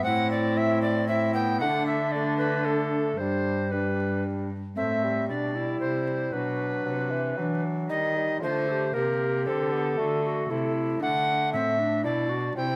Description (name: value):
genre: classical, renaissance-style consort dance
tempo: 115 BPM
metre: 3/4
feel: straight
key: unclear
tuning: A4 = 440 Hz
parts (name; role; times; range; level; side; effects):
- bright tenor recorder; melody; 0.0-12.8 s; A4 to G5; -30 LUFS; equal; none
- mellow bassoon; accompaniment; 0.0-12.8 s; E3 to D4; -35 LUFS; equal; none
- warm cello; bass; 0.0-12.8 s; G2 to E3; -33 LUFS; equal; none
- tenor recorder; second line; 0.1-12.8 s; C4 to A4; -34 LUFS; equal; none
room: moderate recital hall reverb, RT60 1.4 s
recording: vinyl crackle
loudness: -27 LUFS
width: mono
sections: 0.0-4.8 A section; 4.8-12.8 B section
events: none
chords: 0.0 Am; 1.6 D5; 3.2 G; 4.8 Am; 6.3 Bm; 7.9 Eb; 9.5 Dsus4; 10.0 D